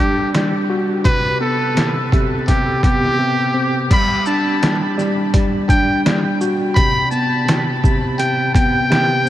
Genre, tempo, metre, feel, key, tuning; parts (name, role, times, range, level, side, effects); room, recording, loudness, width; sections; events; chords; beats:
hip hop, boom-bap hip-hop; 84 BPM; 4/4; swing 57% on 16ths; G major; A4 = 440 Hz
trumpet with metal mute; melody; 0.0-9.3 s; G4 to B5; -19 LUFS; equal; high-pass filter, low-pass filter, diffuse ambient delay
tine electric piano; accompaniment; 0.0-9.3 s; C3 to F#4; -19 LUFS; equal; medium stereo tremolo, cassette tape, high-pass filter, low-pass filter
trip hop sampler-style drum kit; drums; 0.3-9.3 s; crash cymbal, hi-hat, kick drum, shaker, snare drum; -18 LUFS; equal; overdrive
moderate huge ambient reverb, RT60 8.6 s; dreamy mix soaked in reverb, vinyl crackle; -14 LUFS; side -13 dB against mid
0.0-3.9 A section; 3.9-9.3 B section
0.0 G5; 1.0 C5; 3.9 G5; 6.8 C5
0.33 | 1.05 1.76 2.48 3.19 | 3.91 4.62 5.33 6.05 | 6.76 7.48 8.19 8.91